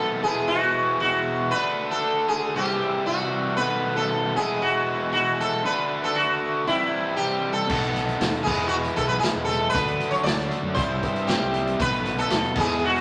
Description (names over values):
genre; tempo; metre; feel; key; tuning
psychedelic rock; 117 BPM; 4/4; straight; unclear; A4 = 442 Hz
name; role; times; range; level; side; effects
sitar; melody; 0.0-13.0 s; E4 to D5; -26 LUFS; equal; none
ensemble organ-string; sustained chords; 0.0-13.0 s; E5 to E6; -41 LUFS; equal; none
overdriven electric guitar; riff; 0.0-13.0 s; E2 to G4; -29 LUFS; equal; none
growling fingered electric bass; bass; 7.7-13.0 s; B1 to G2; -35 LUFS; equal; overdrive
vintage drum kit; drums; 7.7-13.0 s; crash cymbal, hi-hat, kick drum, snare drum; -30 LUFS; equal; none
congas; percussion; 8.0-12.7 s; none; -40 LUFS; equal; none
room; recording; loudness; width
wet large studio reverb, RT60 1.0 s; none; -24 LUFS; mono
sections
0.0-13.0 A section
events
none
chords
0.3 Eadd9; 1.5 Dadd9; 2.6 C; 3.6 B7; 4.4 Eadd9; 5.6 Dadd9; 6.7 C; 7.7 B7; 8.5 Eadd9; 9.7 Dadd9; 10.8 C; 11.8 B7